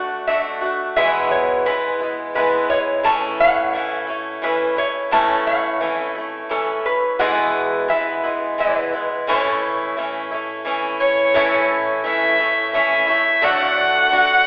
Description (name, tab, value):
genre	country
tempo	87 BPM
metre	3/4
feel	straight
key	A major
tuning	A4 = 440 Hz
part	lap resonator guitar	second line	0.0-11.0 s	A4 to A5	-23 LUFS	equal	none
part	picked swing-style acoustic guitar	accompaniment	0.0-14.5 s	E2 to F#4	-23 LUFS	equal	none
part	fingered electric bass	bass	0.0-14.5 s	E1 to E2	-49 LUFS	equal	none
part	dark fiddle	melody	11.0-14.5 s	C#5 to F#5	-18 LUFS	equal	none
part	pedal steel guitar	sustained chords	11.4-14.5 s	A4 to F#5	-28 LUFS	equal	none
room	wet recital hall reverb, RT60 1.7 s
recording	recorded in a church or concert hall, telephone sound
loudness	-19 LUFS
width	mono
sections	0.0-11.4 A section; 11.4-14.5 B section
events	resonator guitar played with a steel bar solo 0.0-11.4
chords	0.0 D; 1.0 E; 3.0 A; 7.2 E; 9.3 A; 13.4 D